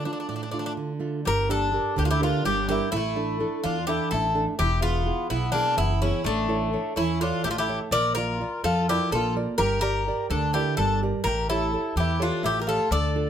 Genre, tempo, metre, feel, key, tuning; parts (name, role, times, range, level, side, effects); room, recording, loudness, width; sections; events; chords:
greek folk, Greek bouzouki band; 252 BPM (eighths); 7/8; straight; A4 = 440 Hz
Greek bouzouki; melody; 0.0-13.3 s; D4 to D5; -26 LUFS; left 1 dB
nylon-string guitar; accompaniment; 0.0-13.3 s; A2 to E5; -28 LUFS; right 4 dB
Greek bouzouki; second line; 1.3-13.3 s; A3 to Bb4; -32 LUFS; left 2 dB
upright bass; bass; 1.3-13.3 s; E1 to F2; -28 LUFS; equal
moderate studio reverb, RT60 0.6 s; -22 LUFS; side -9 dB against mid
0.0-1.3 A section; 1.3-13.3 B section
0.0 Dm; 1.3 Gm; 2.9 Asus4; 4.6 E; 6.2 A; 7.9 Bb; 9.6 Gm; 11.2 A7